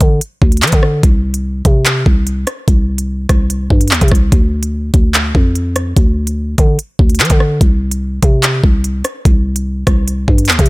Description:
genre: hip hop, drill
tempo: 146 BPM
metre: 4/4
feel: half-time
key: D phrygian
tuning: A4 = 440 Hz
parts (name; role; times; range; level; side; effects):
- growling 808-style bass; bass; 0.0-10.7 s; C2 to F3; -14 LUFS; equal; none
- drill drum kit; drums; 0.0-10.7 s; handclaps, hi-hat, kick drum, rim click; -11 LUFS; equal; none
room: digital ambience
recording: none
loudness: -11 LUFS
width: side -22 dB against mid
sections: 0.0-10.7 A section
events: none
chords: none

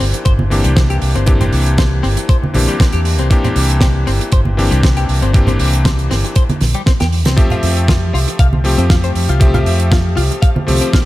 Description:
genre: nu-disco, nu disco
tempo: 118 BPM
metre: 4/4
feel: swing 53% on 16ths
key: C mixolydian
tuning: A4 = 441 Hz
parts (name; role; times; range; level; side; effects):
- bright electric grand piano; accompaniment; 0.0-11.1 s; E3 to E5; -20 LUFS; left 2 dB; sidechain pumping, low-pass filter, dub echo
- twelve-string electric guitar; riff; 0.0-11.0 s; G3 to F5; -24 LUFS; left 4 dB; wide subtle chorus, dub echo
- fingered electric bass with an envelope filter; bass; 0.0-10.8 s; G1 to F2; -15 LUFS; equal; none
- damped 70s drum kit; drums; 0.0-11.0 s; hi-hat, snare drum; -21 LUFS; right 2 dB; studio reverb, dub echo
- electronic kick drum; drums; 0.3-11.0 s; none; -12 LUFS; equal; studio reverb
- congas; percussion; 0.4-10.8 s; none; -22 LUFS; right 2 dB; none
room: small room ambience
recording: echo-heavy mix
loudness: -11 LUFS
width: side -16 dB against mid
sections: 0.0-11.1 A section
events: drum fill 6.6-7.4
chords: 0.0 C7; 7.4 Fmaj7

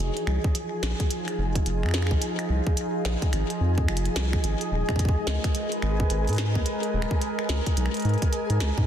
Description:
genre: IDM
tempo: 108 BPM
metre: 4/4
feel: swing 62% on 16ths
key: F minor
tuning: A4 = 445 Hz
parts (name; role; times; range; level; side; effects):
- warbly tape-like pad; sustained chords; 0.0-8.9 s; F3 to Eb5; -30 LUFS; equal; chorus, built-in reverb, sidechain pumping
- round analog bass; bass; 0.0-8.8 s; Eb1 to Ab2; -25 LUFS; equal; tube saturation
- flickering grainy texture; texture; 0.0-8.9 s; Ab4 to Ab5; -36 LUFS; right 1 dB; built-in reverb
- glitchy drum kit; drums; 0.2-8.7 s; finger snaps, hi-hat, snare drum; -33 LUFS; equal; small room ambience, soft clipping on snare, ping-pong delay
- electronic kick drum; drums; 0.4-8.9 s; none; -25 LUFS; equal; small room ambience
room: light reverb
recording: dense, heavily limited modern master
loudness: -23 LUFS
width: side -10 dB against mid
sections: 0.0-8.9 A section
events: none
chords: 0.0 Fm7; 4.4 Abmadd9

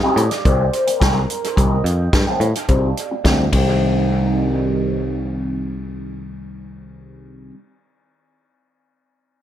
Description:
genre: psychedelic rock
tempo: 107 BPM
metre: 4/4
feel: straight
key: C minor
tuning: A4 = 441 Hz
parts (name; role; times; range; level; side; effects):
- phased analog pad; sustained chords; 0.0-6.8 s; Eb3 to A5; -24 LUFS; right 3 dB; phaser, chorus, low-pass filter
- electric guitar through a small old amp; riff; 0.0-7.6 s; C3 to G4; -22 LUFS; left 2 dB; phaser, low-pass filter
- picked electric bass; bass; 0.2-7.5 s; C2 to A2; -21 LUFS; equal; none
- vintage drum kit; drums; 0.2-3.7 s; hi-hat, kick drum, ride cymbal, snare drum; -20 LUFS; equal; dub echo
room: light reverb, studio reverb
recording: echo-heavy mix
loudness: -16 LUFS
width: side -11 dB against mid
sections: 0.0-3.8 A section; 3.8-6.0 B section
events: analog synth pad solo 0.0-3.8; filter sweep 0.0-3.8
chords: 0.0 Cm

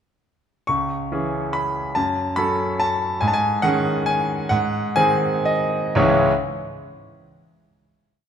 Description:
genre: classical, piano waltz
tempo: 116-151 BPM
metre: 3/4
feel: rubato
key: C# minor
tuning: A4 = 440 Hz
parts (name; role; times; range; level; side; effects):
- bright concert grand piano; solo; 0.7-6.3 s; C#2 to C#6; -19 LUFS; equal; none
room: wet recital hall reverb, RT60 1.9 s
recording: minimal, uncompressed stereo recording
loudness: -18 LUFS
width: side -8 dB against mid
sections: 0.7-6.0 A section; 6.0-7.4 final chord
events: slowing down 2.6-6.0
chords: 0.7 C#m; 2.0 F#m; 3.2 G#7sus4; 4.5 G#7; 6.0 C#m

